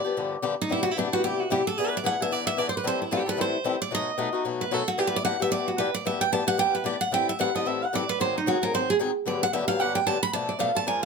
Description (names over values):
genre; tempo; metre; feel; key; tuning
jazz; 224 BPM; 4/4; swing 58% on 8ths; E minor; A4 = 438 Hz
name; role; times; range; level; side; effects
picked steel-string acoustic guitar; melody; 0.0-11.1 s; D4 to B5; -25 LUFS; right 3 dB; none
picked swing-style acoustic guitar; accompaniment; 0.0-11.1 s; G2 to A#4; -28 LUFS; left 6 dB; none
room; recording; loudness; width
light reverb; none; -23 LUFS; side -5 dB against mid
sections
0.0-7.1 A section; 7.1-11.1 A section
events
steel-string acoustic guitar solo 0.0-11.1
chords
0.0 G7; 0.7 Cmaj7; 1.8 E7; 2.8 Am7; 3.9 B7; 5.0 Em7; 7.1 Am7; 8.2 G#7; 9.3 Gmaj7; 10.3 Bm7b5